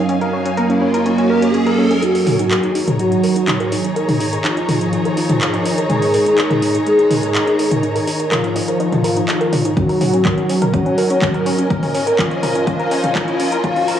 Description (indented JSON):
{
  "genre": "melodic techno",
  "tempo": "124 BPM",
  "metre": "4/4",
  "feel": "straight",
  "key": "Eb minor",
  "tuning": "A4 = 441 Hz",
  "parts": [
    { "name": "deep dark ambient pad", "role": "sustained chords", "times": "0.0-14.0 s", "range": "Eb3 to Eb5", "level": "-24 LUFS", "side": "right 2 dB", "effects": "chorus, built-in reverb, sidechain pumping, cassette tape" },
    { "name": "tight sequenced synth", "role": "arpeggios", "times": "0.0-14.0 s", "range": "Db4 to Bb4", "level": "-22 LUFS", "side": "equal", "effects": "chorus, sidechain pumping, cassette tape, tape echo" },
    { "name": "riser", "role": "sound effects", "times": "0.0-2.0, 11.4-14.0 s", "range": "none", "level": "-25 LUFS", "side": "left 1 dB", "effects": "none" },
    { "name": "warm studio string section", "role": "texture", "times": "0.0-14.0 s", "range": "Gb3 to Bb5", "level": "-25 LUFS", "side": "left 1 dB", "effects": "sidechain pumping, cassette tape" },
    { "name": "house drum kit", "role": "drums", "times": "0.1-14.0 s", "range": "handclaps, hi-hat, toms", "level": "-21 LUFS", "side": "left 1 dB", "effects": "low-pass filter on hats, cassette tape, low-pass filter on toms, low-pass filter on snare, low-pass filter on room" },
    { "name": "expressive synth lead", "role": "melody", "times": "0.6-14.0 s", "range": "Bb3 to Ab4", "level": "-19 LUFS", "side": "equal", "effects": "analog chorus, sidechain pumping, cassette tape, tape echo" },
    { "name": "big bright polysynth", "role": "second line", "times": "2.0-14.0 s", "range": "F3 to Ab3", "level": "-22 LUFS", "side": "right 1 dB", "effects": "chorus, phaser, sidechain pumping, cassette tape, tape echo" },
    { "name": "electronic kick drum", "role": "drums", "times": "9.8-13.7 s", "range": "none", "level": "-20 LUFS", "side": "left 1 dB", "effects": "overdrive, cassette tape" }
  ],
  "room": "wet spring reverb, RT60 1.6 s",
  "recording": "home recording on cassette, high-pass filter, studio reverb",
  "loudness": "-14 LUFS",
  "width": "side -10 dB against mid",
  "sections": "0.0-2.0 A section; 2.0-14.0 B section",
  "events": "riser 0.0-2.0, 11.4-14.0; build-up 2.0-14.0; filter sweep on synth arpeggio sound 2.0-14.0; filter sweep on analog synth lead 2.0-14.0; filter sweep on analog polysynth 2.0-14.0",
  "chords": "0.0 Gb; 2.0 Ebm; 9.8 Gb",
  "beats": "| 0.09 0.57 1.06 1.54 | 2.03 2.51 2.99 3.48 | 3.96 4.45 4.93 5.41 | 5.90 6.38 6.87 7.35 | 7.83 8.32 8.80 9.28 | 9.77 10.25 10.74 11.22 | 11.70 12.19 12.67 13.15 | 13.64"
}